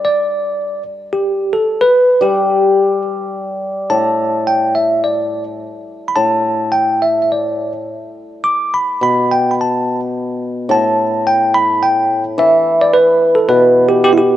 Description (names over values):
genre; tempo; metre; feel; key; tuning
chinese traditional; 107 BPM; 2/4; rubato; G gong mode; A4 = 439 Hz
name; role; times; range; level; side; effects
bell-like tine electric piano; melody; 0.0-14.4 s; E4 to D6; -13 LUFS; right 1 dB; medium stereo tremolo
hammered dulcimer; accompaniment; 2.2-14.4 s; A2 to G3; -17 LUFS; left 2 dB; none
room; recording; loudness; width
moderate plate reverb, RT60 3.0 s; worn, warbling old tape, cassette tape, warbly pitch drift; -12 LUFS; side -12 dB against mid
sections
0.0-3.3 A section; 3.3-12.4 B section; 12.4-14.4 C section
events
none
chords
none